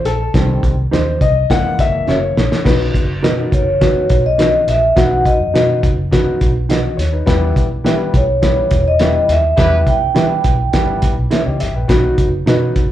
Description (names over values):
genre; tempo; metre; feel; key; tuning
uptempo 1960s-style soul; 104 BPM; 4/4; straight; B major; A4 = 439 Hz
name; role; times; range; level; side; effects
warm concert grand piano; accompaniment; 0.0-12.8 s; Eb3 to G5; -19 LUFS; left 3 dB; plate reverb, slapback echo
vintage muted fingered electric bass; bass; 0.0-12.9 s; E1 to E3; -18 LUFS; equal; none
cloth-damped thuddy drum kit; drums; 0.1-12.9 s; crash cymbal, hi-hat, kick drum, snare drum; -16 LUFS; equal; none
mellow electric guitar; stabs; 0.9-12.6 s; Db4 to Fb5; -22 LUFS; right 5 dB; plate reverb, slapback echo
vibraphone with medium mallets; melody; 3.5-11.0 s; C#5 to G5; -15 LUFS; equal; plate reverb, slapback echo
warm horn section; second line; 9.6-9.8 s; E4 to B4; -25 LUFS; equal; plate reverb, slapback echo
room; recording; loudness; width
moderate club reverb, RT60 0.6 s; live gig heard through the venue's PA, club reverb; -12 LUFS; side -12 dB against mid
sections
0.0-2.7 A section; 2.7-12.9 B section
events
grand piano solo 0.0-2.7; drum fill 2.1-2.7; band accent 9.6-11.9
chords
0.3 Cm; 1.5 Gb7; 2.7 B; 7.3 Em; 11.9 B